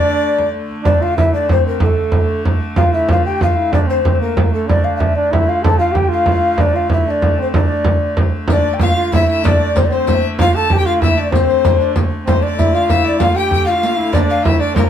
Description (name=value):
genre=medieval dance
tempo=126 BPM (dotted quarters)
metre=6/8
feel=straight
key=D minor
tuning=A4 = 439 Hz
part: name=breathy mellow tenor recorder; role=melody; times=0.0-14.9 s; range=A4 to A5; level=-17 LUFS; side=left 3 dB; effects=none
part: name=clear fiddle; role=second line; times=0.0-0.5, 8.5-14.9 s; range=Bb4 to A5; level=-23 LUFS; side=left 6 dB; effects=none
part: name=mellow flugelhorn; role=second line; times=0.0-14.9 s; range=A3 to A4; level=-20 LUFS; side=right 3 dB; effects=none
part: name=rich hurdy-gurdy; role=drone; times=0.0-14.9 s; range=D3 to A3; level=-25 LUFS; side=left 1 dB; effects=none
part: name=frame drum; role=percussion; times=0.2-14.9 s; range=none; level=-15 LUFS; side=right 1 dB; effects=none
part: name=riq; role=percussion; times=8.5-14.9 s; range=none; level=-26 LUFS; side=left 2 dB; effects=none
room=wet studio reverb, RT60 0.6 s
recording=band playing live in one room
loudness=-12 LUFS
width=side -9 dB against mid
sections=0.9-8.5 A section; 8.5-14.9 A section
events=speeding up 0.0-14.9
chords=none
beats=0.37 | 0.85 1.33 | 1.81 2.29 | 2.77 3.25 | 3.73 4.21 | 4.69 5.17 | 5.64 6.12 | 6.60 7.07 | 7.55 8.02 | 8.50 8.97 | 9.44 9.92 | 10.39 10.86 | 11.33 11.80 | 12.27 12.74 | 13.21 13.68 | 14.15 14.62